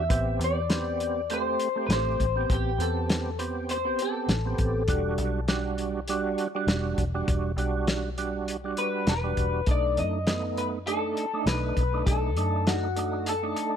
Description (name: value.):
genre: straight-eighth soul blues.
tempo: 100 BPM.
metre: 4/4.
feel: swing 55% on 16ths.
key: E minor.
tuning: A4 = 440 Hz.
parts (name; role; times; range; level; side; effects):
electric guitar through a small old amp; melody; 0.0-13.8 s; F#4 to E5; -29 LUFS; left 4 dB; analog chorus.
percussive tonewheel organ; accompaniment; 0.0-13.8 s; G3 to G4; -31 LUFS; right 6 dB; slow rotary speaker, overdrive, chorus vibrato.
vintage muted fingered electric bass; bass; 0.0-13.5 s; E1 to F#2; -30 LUFS; left 1 dB; none.
warm soul drum kit; drums; 0.1-13.7 s; hi-hat, kick drum, snare drum; -29 LUFS; left 1 dB; none.
room: light reverb, small room reverb.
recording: none.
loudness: -25 LUFS.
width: side -8 dB against mid.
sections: 0.0-13.8 A section.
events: none.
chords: 0.1 Am7; 4.9 Em7; 9.7 B7#9.